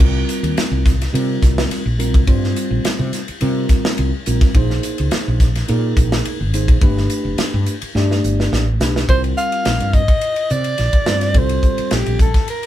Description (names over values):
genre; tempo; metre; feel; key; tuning
electric jazz fusion; 106 BPM; 4/4; straight; C dorian from 9.1 s; A4 = 442 Hz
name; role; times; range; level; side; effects
mellow tine electric piano; accompaniment; 0.0-12.3 s; G3 to D5; -22 LUFS; equal; none
woody fretless electric bass; bass; 0.0-12.3 s; F1 to C3; -19 LUFS; equal; none
modern studio drum kit; drums; 0.0-12.7 s; crash cymbal, hi-hat, kick drum, ride cymbal, snare drum; -17 LUFS; equal; none
breathy soprano saxophone; melody; 9.1-12.7 s; G4 to F5; -20 LUFS; equal; none
room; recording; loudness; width
moderate small room reverb, RT60 0.5 s; band playing live in one room; -14 LUFS; side -12 dB against mid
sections
0.0-9.1 A section; 9.1-12.7 B section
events
drum fill 8.0-9.1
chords
0.0 C7(no3); 4.5 Bb9sus4; 6.8 G; 9.1 C7(no3)